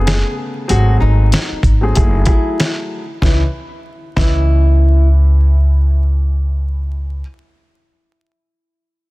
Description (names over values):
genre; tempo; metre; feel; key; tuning
hip hop, boom-bap hip-hop; 95 BPM; 4/4; swing 57% on 16ths; C# minor; A4 = 441 Hz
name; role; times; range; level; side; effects
dark baby grand piano; accompaniment; 0.0-7.2 s; C#3 to D#5; -23 LUFS; left 2 dB; high-pass filter, low-pass filter
upright bass; bass; 0.0-7.2 s; F#1 to C#2; -12 LUFS; equal; none
nylon-string guitar; melody; 0.1-5.1 s; D#4 to G#4; -24 LUFS; left 1 dB; high-pass filter, low-pass filter, tape echo
dusty soul sampler-style drum kit; drums; 0.1-4.4 s; hi-hat, kick drum, snare drum; -16 LUFS; equal; none
room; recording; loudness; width
small room ambience; dense, heavily limited modern master, vinyl crackle; -12 LUFS; side -21 dB against mid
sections
0.0-3.2 A section; 3.2-5.7 B section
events
none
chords
0.0 Amaj9; 0.7 G#7b9; 2.0 F#m9; 3.2 C#m9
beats
0.06 | 0.69 1.33 1.96 2.59 | 3.22 3.85 4.48 5.12